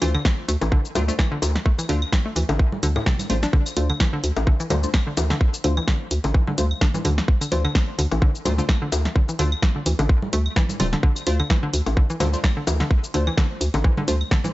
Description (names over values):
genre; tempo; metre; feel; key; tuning
minimal techno; 128 BPM; 4/4; swing 56% on 16ths; D minor; A4 = 440 Hz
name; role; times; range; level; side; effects
hollow square pluck; riff; 0.0-14.5 s; A2 to D4; -28 LUFS; equal; chorus, sidechain pumping, digital delay
wavetable chord stab; stabs; 0.0-14.2 s; A3 to C5; -31 LUFS; left 2 dB; dub echo
hollow knocking FM bass; bass; 0.0-14.2 s; D1 to D2; -22 LUFS; equal; sidechain pumping
punchy analog drum machine; drums; 0.0-14.5 s; hi-hat, shaker, snare drum; -27 LUFS; equal; overdrive, small room reverb
claves, bongos and congas; percussion; 0.1-14.5 s; none; -30 LUFS; left 1 dB; overdrive, small room reverb
electronic kick drum; drums; 0.2-14.4 s; none; -19 LUFS; equal; small room reverb
room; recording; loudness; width
little or no reverb; nothing above 7.8 kHz; -19 LUFS; side -17 dB against mid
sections
0.0-14.5 A section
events
none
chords
0.0 Dm7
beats
0.25 0.72 1.19 | 1.66 2.13 2.60 3.06 | 3.53 4.00 4.47 4.94 | 5.41 5.88 6.34 6.81 | 7.28 7.75 8.22 8.69 | 9.16 9.63 10.10 10.56 | 11.03 11.50 11.97 12.44 | 12.91 13.38 13.85 14.31